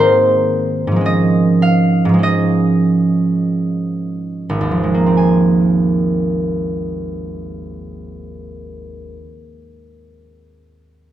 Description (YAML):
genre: classical, solo harp piece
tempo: 34-59 BPM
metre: 3/4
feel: rubato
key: Ab major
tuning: A4 = 440 Hz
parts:
  - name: concert harp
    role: solo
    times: 0.0-9.8 s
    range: Ab1 to Ab5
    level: -14 LUFS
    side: right 1 dB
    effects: none
room: wet recital hall reverb, RT60 1.5 s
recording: dark, warm production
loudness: -13 LUFS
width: side -12 dB against mid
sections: 0.0-5.2 A section; 5.2-9.5 B section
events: slowing down 0.0-5.2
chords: 0.0 Abadd9; 5.2 Ab69